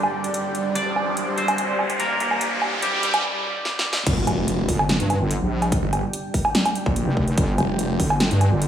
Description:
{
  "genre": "heavy wobble dubstep",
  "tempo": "145 BPM",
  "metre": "4/4",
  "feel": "half-time",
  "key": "G minor",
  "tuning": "A4 = 440 Hz",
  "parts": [
    { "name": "twangy electric guitar", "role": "melody", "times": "0.0-4.0 s", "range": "D3 to D5", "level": "-27 LUFS", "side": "equal", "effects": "analog chorus, digital delay" },
    { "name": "supersaw pad", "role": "sustained chords", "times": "0.0-8.7 s", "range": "G3 to G5", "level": "-29 LUFS", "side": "right 1 dB", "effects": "sidechain pumping, low-pass filter" },
    { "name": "big-room dance drum kit", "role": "drums", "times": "0.0-8.7 s", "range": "crash cymbal, hi-hat, snare drum, woodblock", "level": "-24 LUFS", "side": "right 1 dB", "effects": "high-pass filter on hats, studio reverb, high-pass filter on snare, high-pass filter on perc, high-pass filter on cymbals" },
    { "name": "riser and impact", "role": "sound effects", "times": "0.0-5.7 s", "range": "none", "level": "-27 LUFS", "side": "equal", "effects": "none" },
    { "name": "granular cloud pad", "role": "texture", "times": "0.0-3.2 s", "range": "G3 to D6", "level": "-34 LUFS", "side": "right 2 dB", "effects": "built-in reverb, sidechain pumping" },
    { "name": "wobble bass", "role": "bass", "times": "4.1-8.7 s", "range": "F1 to G2", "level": "-21 LUFS", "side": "equal", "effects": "chorus, overdrive" },
    { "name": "electronic kick drum", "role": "drums", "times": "4.1-8.1 s", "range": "none", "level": "-24 LUFS", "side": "equal", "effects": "overdrive, studio reverb" },
    { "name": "snarling distorted saw bass", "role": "bass", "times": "4.3-8.0 s", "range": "F1 to Bb1", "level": "-23 LUFS", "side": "equal", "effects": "overdrive" }
  ],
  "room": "moderate digital room reverb, RT60 1.2 s, digital ambience",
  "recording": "high-pass filter, studio reverb",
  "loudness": "-19 LUFS",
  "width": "side -9 dB against mid",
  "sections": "0.0-4.1 A section; 4.1-8.7 B section",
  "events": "build-up 0.0-4.1; riser 0.0-3.2; filter sweep on supersaw synth 0.0-4.1; filter sweep 0.0-4.1; break 3.2-4.1; drum fill 3.7-4.1; drop 4.1-8.7; impact 4.1-5.7",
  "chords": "0.0 G5",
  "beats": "0.34 | 0.76 1.17 1.58 2.00 | 2.41 2.82 3.24 3.65 | 4.07 4.48 4.89 5.31 | 5.72 6.13 6.55 6.96 | 7.38 7.79 8.20 8.62"
}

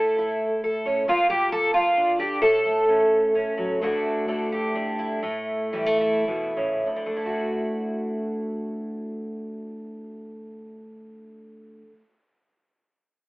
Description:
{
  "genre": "folk, solo fingerstyle acoustic guitar",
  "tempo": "98-136 BPM",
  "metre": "3/4",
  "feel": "rubato",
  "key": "D major",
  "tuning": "A4 = 440 Hz",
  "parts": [
    { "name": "fingerpicked twelve-string acoustic guitar", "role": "solo", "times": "0.0-12.1 s", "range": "D2 to A4", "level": "-22 LUFS", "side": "equal", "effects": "none" }
  ],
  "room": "light reverb",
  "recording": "band playing live in one room, telephone sound",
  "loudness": "-22 LUFS",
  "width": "side -22 dB against mid",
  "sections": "0.0-3.8 A section; 3.8-6.9 B section; 6.9-10.4 C section",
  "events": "slowing down 3.8-6.9",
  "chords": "0.0 A; 1.1 Bb; 2.4 F#m/A; 3.8 Dadd9; 5.2 A; 6.9 Dadd9",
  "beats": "0.17 0.62 | 1.07 1.51 1.96 | 2.41 2.87 3.34 | 3.81 4.28 4.74 | 5.21 5.72 6.26 | 6.86 7.46 8.05 | 8.64 9.24 9.84"
}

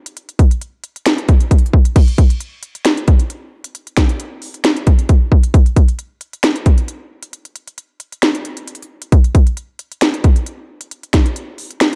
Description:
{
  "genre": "hip hop",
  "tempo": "134 BPM",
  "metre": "4/4",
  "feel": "half-time",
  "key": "none",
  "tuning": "none",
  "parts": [
    { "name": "trap drum kit", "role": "drums", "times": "0.1-12.0 s", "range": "crash cymbal, finger snaps, hi-hat, kick drum, snare drum", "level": "-14 LUFS", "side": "equal", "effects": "none" }
  ],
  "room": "light reverb",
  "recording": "dark, warm production",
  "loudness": "-14 LUFS",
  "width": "mono",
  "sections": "0.0-2.0 A section; 2.0-12.0 B section",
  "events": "break 7.3-9.1",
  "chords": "none",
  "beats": "| 0.17 0.61 1.06 1.51 | 1.96 2.41 2.85 3.30 | 3.75 4.20 4.64 5.09 | 5.54 5.99 6.44 6.88 | 7.33 7.78 8.23 8.68 | 9.12 9.57 10.02 10.47 | 10.91 11.36 11.81"
}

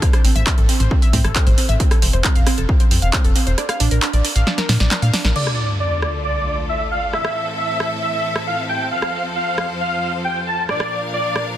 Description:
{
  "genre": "uplifting trance",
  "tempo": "135 BPM",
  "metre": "4/4",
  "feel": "straight",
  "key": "D minor",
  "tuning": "A4 = 440 Hz",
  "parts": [
    { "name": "analog pluck", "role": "arpeggios", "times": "0.0-5.3 s", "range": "C4 to F5", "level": "-25 LUFS", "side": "right 2 dB", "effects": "chorus, sidechain pumping, digital delay" },
    { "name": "electronic kick drum", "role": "drums", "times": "0.0-3.2 s", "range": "none", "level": "-16 LUFS", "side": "equal", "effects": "none" },
    { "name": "techno drum kit", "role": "drums", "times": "0.0-11.4 s", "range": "crash cymbal, handclaps, hi-hat, rim click, snare drum", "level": "-22 LUFS", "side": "right 1 dB", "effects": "none" },
    { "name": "plucky analog bass", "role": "bass", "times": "0.2-5.3 s", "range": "F1 to Bb2", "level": "-17 LUFS", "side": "equal", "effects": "sidechain pumping" },
    { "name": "dense compressed supersaw", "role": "melody", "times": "5.4-11.5 s", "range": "D5 to A5", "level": "-21 LUFS", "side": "equal", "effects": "sidechain pumping, low-pass filter, digital delay" },
    { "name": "bright studio string section", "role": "sustained chords", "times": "5.4-11.6 s", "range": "D2 to F5", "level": "-26 LUFS", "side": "equal", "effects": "sidechain pumping" },
    { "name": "sub drop", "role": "sound effects", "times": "5.4-7.1 s", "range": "none", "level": "-23 LUFS", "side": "equal", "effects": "none" }
  ],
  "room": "digital ambience",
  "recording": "dense, heavily limited modern master",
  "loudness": "-16 LUFS",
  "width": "side -12 dB against mid",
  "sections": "0.0-5.4 A section; 5.4-11.6 B section",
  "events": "kick drops out 3.6-5.4; drum fill 4.5-5.4; band accent 5.2; impact 5.4-7.1; filter sweep on supersaw synth 5.4-11.6",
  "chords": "0.0 Am; 1.8 F; 3.6 Bb; 5.4 Dm; 7.1 Am; 8.9 F; 10.7 Bb",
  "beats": "| 0.02 0.47 0.91 1.36 | 1.80 2.25 2.69 3.13 | 3.58 4.02 4.47 4.91 | 5.36 5.80 6.25 6.69 | 7.13 7.58 8.02 8.47 | 8.91 9.36 9.80 10.24 | 10.69 11.13"
}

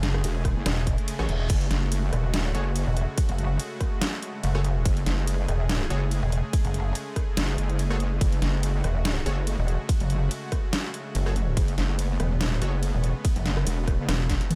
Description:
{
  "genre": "heavy wobble dubstep",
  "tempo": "143 BPM",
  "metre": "4/4",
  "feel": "swing 54% on 16ths, half-time",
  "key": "F# minor",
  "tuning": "A4 = 440 Hz",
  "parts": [
    { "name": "supersaw pad", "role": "sustained chords", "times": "0.0-14.6 s", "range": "C#3 to G#4", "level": "-38 LUFS", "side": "equal", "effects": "sidechain pumping" },
    { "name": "pulsing pluck wobble bass", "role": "bass", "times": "0.0-14.4 s", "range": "E1 to F#1", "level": "-27 LUFS", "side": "equal", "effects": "chorus, overdrive" },
    { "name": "dubstep drum kit", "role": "drums", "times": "0.0-14.6 s", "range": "crash cymbal, hi-hat, ride cymbal, rim click, snare drum, toms", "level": "-34 LUFS", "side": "equal", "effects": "overdrive" },
    { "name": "wobble bass", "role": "bass", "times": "0.2-14.1 s", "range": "E1 to A1", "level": "-28 LUFS", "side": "equal", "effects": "chorus, overdrive" },
    { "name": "electronic kick drum", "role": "drums", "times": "0.4-14.4 s", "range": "none", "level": "-28 LUFS", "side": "equal", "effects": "overdrive" },
    { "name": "reverse cymbal", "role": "sound effects", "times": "0.9-1.5 s", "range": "none", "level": "-44 LUFS", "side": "equal", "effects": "none" },
    { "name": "supersaw stab", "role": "stabs", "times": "1.2-12.7 s", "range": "F#4 to C#5", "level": "-41 LUFS", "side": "equal", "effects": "none" }
  ],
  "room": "little or no reverb",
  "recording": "none",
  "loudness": "-26 LUFS",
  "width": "mono",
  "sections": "0.0-14.6 A section",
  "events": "reverse cymbal 0.9-1.5; drum fill 14.3",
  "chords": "0.0 F#madd9",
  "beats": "0.24 0.66 1.08 | 1.50 1.92 2.34 2.76 | 3.18 3.60 4.02 4.43 | 4.86 5.27 5.69 6.11 | 6.53 6.95 7.37 7.79 | 8.21 8.63 9.05 9.47 | 9.89 10.31 10.73 11.15 | 11.57 11.99 12.41 12.83 | 13.25 13.67 14.09 14.51"
}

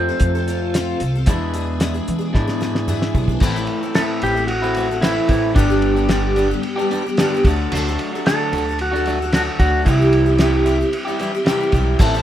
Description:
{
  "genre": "folk rock and heartland rock",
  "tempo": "112 BPM",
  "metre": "4/4",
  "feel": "straight",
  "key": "A dorian from 3.4 s",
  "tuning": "A4 = 441 Hz",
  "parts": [
    { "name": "pedal steel guitar", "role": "melody", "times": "0.0-10.9 s", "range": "D4 to C5", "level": "-20 LUFS", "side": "right 1 dB", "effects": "slapback echo" },
    { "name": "picked twelve-string acoustic guitar", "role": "accompaniment", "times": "0.0-12.2 s", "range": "G2 to A4", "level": "-23 LUFS", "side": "left 1 dB", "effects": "none" },
    { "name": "tonewheel organ", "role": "sustained chords", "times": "0.0-12.2 s", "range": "F#3 to D5", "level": "-36 LUFS", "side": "equal", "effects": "none" },
    { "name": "electric guitar through a small old amp", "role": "riff", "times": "0.0-12.2 s", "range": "E2 to A4", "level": "-24 LUFS", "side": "equal", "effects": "none" },
    { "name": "upright bass", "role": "bass", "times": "0.0-12.2 s", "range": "G1 to E3", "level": "-21 LUFS", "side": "equal", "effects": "none" },
    { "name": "cloth-damped thuddy drum kit", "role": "drums", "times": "0.2-12.1 s", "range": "crash cymbal, hi-hat, kick drum, ride cymbal, snare drum, toms", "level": "-21 LUFS", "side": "equal", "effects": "none" }
  ],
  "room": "little or no reverb",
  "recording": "rough home demo mix",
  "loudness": "-16 LUFS",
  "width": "side -11 dB against mid",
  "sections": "0.0-3.4 A section; 3.4-12.2 B section",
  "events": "pedal steel guitar solo 0.0-3.4; drum fill 2.3-3.4",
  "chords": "0.0 F; 1.3 E7; 3.4 Am; 5.6 G; 7.4 D; 9.9 C",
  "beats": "0.21 0.74 | 1.28 1.81 2.35 2.88 | 3.42 3.96 4.49 5.03 | 5.56 6.10 6.64 7.17 | 7.71 8.25 8.78 9.32 | 9.86 10.39 10.93 11.47 | 12.00"
}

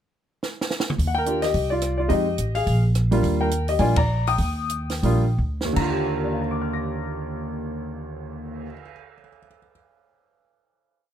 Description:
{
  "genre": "jazz piano trio",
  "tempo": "150-215 BPM",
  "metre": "4/4",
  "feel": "swing 60% on 8ths",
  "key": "Eb major",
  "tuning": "A4 = 435 Hz",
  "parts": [
    { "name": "compact cocktail drum kit", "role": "drums", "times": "0.4-8.9 s", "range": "crash cymbal, cymbal swell, hi-hat, kick drum, ride cymbal, rim click, snare drum, toms", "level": "-29 LUFS", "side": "right 2 dB", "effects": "none" },
    { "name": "upright bass", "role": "bass", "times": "1.0-8.7 s", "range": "A1 to F2", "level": "-24 LUFS", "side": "equal", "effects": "none" },
    { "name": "warm concert grand piano", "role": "melody", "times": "1.1-9.7 s", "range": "Eb2 to Bb6", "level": "-24 LUFS", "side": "left 1 dB", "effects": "none" }
  ],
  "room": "light reverb",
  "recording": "close, detailed microphones",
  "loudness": "-21 LUFS",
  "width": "side -10 dB against mid",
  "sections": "0.0-1.0 pickup bar; 1.0-5.8 A section; 5.8-9.0 final chord",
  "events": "drum fill 0.4-1.0, 5.4-5.8; slowing down 3.2-5.8; band accent 3.9",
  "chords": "0.0 N.C.; 1.0 Ebmaj9; 1.5 Csus2; 2.1 Fm9; 2.7 Bb5; 3.2 Ebmaj9",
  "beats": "0.14 0.42 0.70 | 0.98 1.26 1.55 1.83 | 2.11 2.39 2.67 2.94 | 3.22 3.50 3.79 4.08 | 4.38 4.70 5.03 5.39 | 5.77 6.17 6.56 6.96 | 7.36 7.76 8.15 8.55"
}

